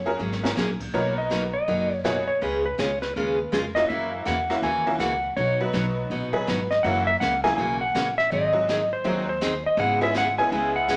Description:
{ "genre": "country, western swing", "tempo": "163 BPM", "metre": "4/4", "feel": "swing 63% on 8ths", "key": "unclear", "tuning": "A4 = 440 Hz", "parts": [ { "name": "clean lap steel guitar", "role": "melody", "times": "0.0-11.0 s", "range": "B4 to G#5", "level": "-27 LUFS", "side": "equal", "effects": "none" }, { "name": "upright bass", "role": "bass", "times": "0.0-11.0 s", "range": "F#1 to F#2", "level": "-36 LUFS", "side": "equal", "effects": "none" }, { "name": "tack piano", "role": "accompaniment", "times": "0.1-10.9 s", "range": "F#3 to A#4", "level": "-31 LUFS", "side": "equal", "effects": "none" }, { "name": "picked steel-string acoustic guitar", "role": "accompaniment", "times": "0.2-11.0 s", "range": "B2 to G#4", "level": "-31 LUFS", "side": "equal", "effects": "none" }, { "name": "jazz brush drum kit", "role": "drums", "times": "0.3-11.0 s", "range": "brushed snare drum, crash cymbal, hi-hat, kick drum, snare drum", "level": "-36 LUFS", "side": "equal", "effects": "none" } ], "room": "moderate large studio reverb, RT60 1.1 s", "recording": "none", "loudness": "-24 LUFS", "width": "mono", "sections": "0.0-6.8 A section; 6.8-11.0 B section", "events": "drum fill 0.2-0.6", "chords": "0.0 F#add9; 0.9 Bmaj7; 2.4 C#; 3.9 F#7; 5.4 B; 6.8 F#7; 8.3 G#7; 9.8 C#m7/G#" }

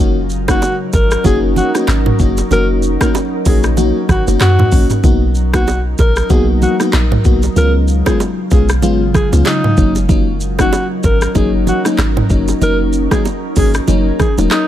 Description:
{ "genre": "afrobeats", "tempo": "95 BPM", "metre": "4/4", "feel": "swing 58% on 16ths", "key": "F# major", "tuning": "A4 = 442 Hz", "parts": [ { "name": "FM electric piano with soft pad layer", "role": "accompaniment", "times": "0.0-14.5 s", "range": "F#3 to F#4", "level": "-18 LUFS", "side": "left 3 dB", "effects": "chorus" }, { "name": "glassy FM pad", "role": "sustained chords", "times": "0.0-14.7 s", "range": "C#3 to A#4", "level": "-21 LUFS", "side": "right 1 dB", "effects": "ensemble chorus, built-in reverb, sidechain pumping" }, { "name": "clean 808-style bass", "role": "bass", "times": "0.0-14.5 s", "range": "D#1 to F#2", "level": "-15 LUFS", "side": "equal", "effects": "none" }, { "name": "afro-pop drum kit", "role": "drums", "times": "0.3-14.7 s", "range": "handclaps, hi-hat, kick drum, rim click, shaker, toms", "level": "-15 LUFS", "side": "equal", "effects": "none" }, { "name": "breathy alto saxophone", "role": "melody", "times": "0.5-14.7 s", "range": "D#4 to A#4", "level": "-19 LUFS", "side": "equal", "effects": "digital delay" }, { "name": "bongos and congas", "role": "percussion", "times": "0.5-14.7 s", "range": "none", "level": "-22 LUFS", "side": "right 8 dB", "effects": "none" } ], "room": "little or no reverb", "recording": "none", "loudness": "-11 LUFS", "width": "side -12 dB against mid", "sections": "0.0-14.7 A section", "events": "none", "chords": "0.0 F#6; 5.0 Bmaj7; 7.6 C#7; 9.8 F#6" }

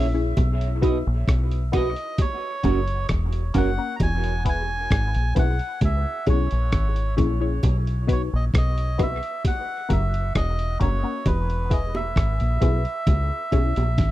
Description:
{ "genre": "dub reggae", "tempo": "66 BPM", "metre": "4/4", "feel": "straight", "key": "B major", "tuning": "A4 = 443 Hz", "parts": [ { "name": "semi-hollow electric guitar", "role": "accompaniment", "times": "0.0-3.7 s", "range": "C#4 to D#5", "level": "-30 LUFS", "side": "right 8 dB", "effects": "dub echo" }, { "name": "filtered dub chord stab", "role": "stabs", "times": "0.0-13.7 s", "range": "A#3 to C#5", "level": "-30 LUFS", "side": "left 5 dB", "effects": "phaser, dub echo" }, { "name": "deep dub fingered electric bass", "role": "bass", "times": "0.0-14.1 s", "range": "E1 to C#2", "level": "-23 LUFS", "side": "equal", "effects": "none" }, { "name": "lo-fi sampler-style drum kit", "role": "drums", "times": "0.4-14.1 s", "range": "hi-hat, kick drum, rim click, snare drum", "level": "-23 LUFS", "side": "equal", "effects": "none" }, { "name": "bongos", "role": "percussion", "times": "0.4-14.0 s", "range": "none", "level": "-34 LUFS", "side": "right 3 dB", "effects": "dub echo" }, { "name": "melodica", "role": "melody", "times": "1.8-14.1 s", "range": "B4 to A#5", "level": "-30 LUFS", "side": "right 2 dB", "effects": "dub echo" } ], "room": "little or no reverb", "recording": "dry, close 1970s-style studio recording", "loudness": "-20 LUFS", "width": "side -15 dB against mid", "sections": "0.0-14.1 A section", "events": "none", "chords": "0.4 B; 2.2 F#; 4.0 E; 5.8 C#m; 7.6 B; 9.4 F#; 11.3 E; 13.1 C#m" }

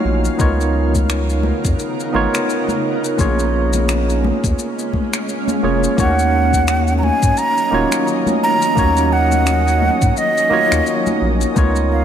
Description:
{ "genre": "sunset chillout", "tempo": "86 BPM", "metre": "4/4", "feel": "swing 57% on 16ths", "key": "Eb minor", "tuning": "A4 = 441 Hz", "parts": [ { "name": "barky tine electric piano", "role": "accompaniment", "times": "0.0-12.0 s", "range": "Bb3 to Db5", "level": "-20 LUFS", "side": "right 1 dB", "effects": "overdrive, medium tremolo, auto-pan, digital delay" }, { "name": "shimmering ambient pad", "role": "sustained chords", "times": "0.0-12.0 s", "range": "Db3 to F5", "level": "-23 LUFS", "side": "right 1 dB", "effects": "chorus, built-in reverb" }, { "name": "round analog bass", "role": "bass", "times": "0.1-12.0 s", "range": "Eb1 to Ab2", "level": "-18 LUFS", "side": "equal", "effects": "none" }, { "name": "shaker and finger snaps", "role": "drums", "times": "0.2-11.9 s", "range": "none", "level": "-27 LUFS", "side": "left 2 dB", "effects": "none" }, { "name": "electronic kick drum", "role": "drums", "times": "0.4-11.7 s", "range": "none", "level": "-18 LUFS", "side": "equal", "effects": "none" }, { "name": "congas", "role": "percussion", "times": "0.4-11.7 s", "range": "none", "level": "-26 LUFS", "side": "left 6 dB", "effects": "none" }, { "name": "breathy jazz flute", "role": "melody", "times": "6.0-12.0 s", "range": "Eb5 to Bb5", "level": "-17 LUFS", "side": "right 2 dB", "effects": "digital delay" } ], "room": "light reverb, small room reverb", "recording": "none", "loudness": "-14 LUFS", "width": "side -9 dB against mid", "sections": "0.0-12.0 A section", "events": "none", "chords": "0.4 Db13; 3.2 Bbm7; 6.0 Ebm9" }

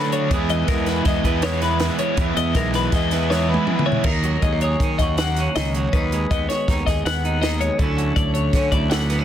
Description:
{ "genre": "math rock and midwest emo", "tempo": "160 BPM", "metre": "5/4", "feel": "straight", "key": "E lydian", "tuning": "A4 = 440 Hz", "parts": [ { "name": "twelve-string electric guitar", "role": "accompaniment", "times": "0.0-9.2 s", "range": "E2 to B4", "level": "-25 LUFS", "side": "right 4 dB", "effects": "none" }, { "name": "twelve-string electric guitar", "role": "arpeggios", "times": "0.0-9.2 s", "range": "A4 to F#5", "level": "-25 LUFS", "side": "left 6 dB", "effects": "spring reverb" }, { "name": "biting overdriven guitar", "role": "riff", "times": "0.0-4.1 s", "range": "D3 to F#4", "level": "-24 LUFS", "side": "right 2 dB", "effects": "none" }, { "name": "compact cocktail drum kit", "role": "drums", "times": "0.1-9.2 s", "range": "crash cymbal, hi-hat, kick drum, snare drum, toms", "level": "-23 LUFS", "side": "equal", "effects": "none" }, { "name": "fuzz fingered electric bass", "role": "bass", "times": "0.3-9.2 s", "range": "B1 to D#3", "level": "-23 LUFS", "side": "equal", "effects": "overdrive" } ], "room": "light reverb", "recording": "dense, heavily limited modern master", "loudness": "-18 LUFS", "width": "side -10 dB against mid", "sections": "0.0-4.1 A section; 4.1-9.2 B section", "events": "drum fill 3.3-4.1", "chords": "0.3 Emaj7; 4.1 D#m7; 5.9 G#m7/D#; 7.8 Dmaj9" }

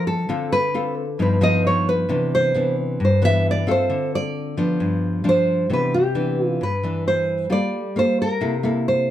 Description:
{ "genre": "bossa nova", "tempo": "133 BPM", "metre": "4/4", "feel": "straight", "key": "C major", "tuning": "A4 = 440 Hz", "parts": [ { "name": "nylon-string guitar", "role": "melody", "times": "0.0-9.1 s", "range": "G4 to E5", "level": "-21 LUFS", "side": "right 1 dB", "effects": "none" }, { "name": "nylon-string guitar", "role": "accompaniment", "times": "0.0-9.1 s", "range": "G2 to C5", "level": "-21 LUFS", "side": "left 1 dB", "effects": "none" } ], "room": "moderate studio reverb, RT60 0.7 s", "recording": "none", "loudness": "-18 LUFS", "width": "side -12 dB against mid", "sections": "0.0-5.7 A section; 5.7-9.1 B section", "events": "nylon-string guitar solo 0.0-5.7", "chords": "0.3 Dm7; 1.2 Gaug7; 2.1 Cmaj9; 3.9 Dm7; 4.8 G7; 5.7 Cmaj9; 7.5 Gm9; 8.4 C6" }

